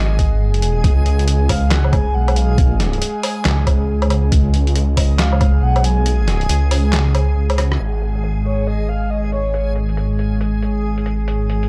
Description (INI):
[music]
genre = deep dubstep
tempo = 138 BPM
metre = 4/4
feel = swing 62% on 16ths, half-time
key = G# dorian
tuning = A4 = 442 Hz
[part]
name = breathy flute-like synth lead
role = melody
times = 0.0-9.7 s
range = C#5 to G#5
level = -30 LUFS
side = equal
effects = subtle chorus, dub echo
[part]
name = overtone-sweeping drone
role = sustained chords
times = 0.1-11.7 s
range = G#3 to G#4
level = -28 LUFS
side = equal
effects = chorus, built-in reverb, vintage 12-bit sampler grit
[part]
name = dark detuned saw bass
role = bass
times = 0.0-11.7 s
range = G#1 to C#2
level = -19 LUFS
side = equal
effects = none
[part]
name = backwards swelling texture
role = texture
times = 0.0-11.7 s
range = G#4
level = -34 LUFS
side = equal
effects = built-in reverb
[part]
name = electronic kick drum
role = drums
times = 0.2-5.5 s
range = none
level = -19 LUFS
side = equal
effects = none
[part]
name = trip hop sampler-style drum kit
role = drums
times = 0.2-11.7 s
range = crash cymbal, handclaps, hi-hat, rim click, snare drum, woodblock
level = -26 LUFS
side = equal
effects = low-pass filter on hats, low-pass filter on snare, low-pass filter on perc, low-pass filter on cymbals
[sound]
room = little or no reverb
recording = dry, gritty hardware recording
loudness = -17 LUFS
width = mono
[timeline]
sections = 0.0-7.8 A section; 7.8-11.7 B section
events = kick drops out 6.1-7.8; drum fill 7.6; filter sweep on drum 7.8-11.7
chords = 0.0 G#5; 0.8 C#5; 7.8 G#5